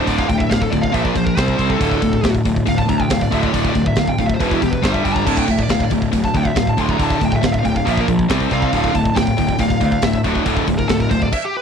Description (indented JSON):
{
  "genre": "heavy metal",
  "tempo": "139 BPM",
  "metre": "4/4",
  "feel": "straight",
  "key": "D minor",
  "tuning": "A4 = 442 Hz",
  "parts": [
    { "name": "high-gain lead guitar", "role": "melody", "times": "0.0-11.6 s", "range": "E4 to C6", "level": "-22 LUFS", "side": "right 1 dB", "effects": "distortion, slapback echo" },
    { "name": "sludgy distorted guitar", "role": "riff", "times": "0.0-11.3 s", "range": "D2 to C4", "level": "-21 LUFS", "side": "right 12 dB", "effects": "overdrive" },
    { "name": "tight distorted guitar", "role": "riff", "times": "0.0-11.3 s", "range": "D2 to C4", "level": "-20 LUFS", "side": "left 12 dB", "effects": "distortion" },
    { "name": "fuzz picked electric bass", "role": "bass", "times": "0.1-11.3 s", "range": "D1 to D2", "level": "-23 LUFS", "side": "equal", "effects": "overdrive" },
    { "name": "tight metal drum kit", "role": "drums", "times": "0.1-11.4 s", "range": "crash cymbal, hi-hat, kick drum, snare drum", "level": "-22 LUFS", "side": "equal", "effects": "none" }
  ],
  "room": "little or no reverb",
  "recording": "dry, close 1970s-style studio recording",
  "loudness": "-15 LUFS",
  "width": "side -7 dB against mid",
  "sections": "0.0-11.6 A section",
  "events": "lead electric guitar solo 0.0-11.6; stop 11.3",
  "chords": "0.0 D5; 0.9 Bb5; 1.4 C5; 1.8 D5; 4.4 E5; 4.8 G5; 5.3 D5; 7.9 Bb5; 8.3 C5; 8.7 Dm",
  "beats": "| 0.08 0.51 0.94 1.38 | 1.81 2.24 2.67 3.10 | 3.54 3.97 4.40 4.83 | 5.27 5.70 6.13 6.57 | 7.00 7.43 7.87 8.30 | 8.73 9.16 9.60 10.03 | 10.46 10.90 11.33"
}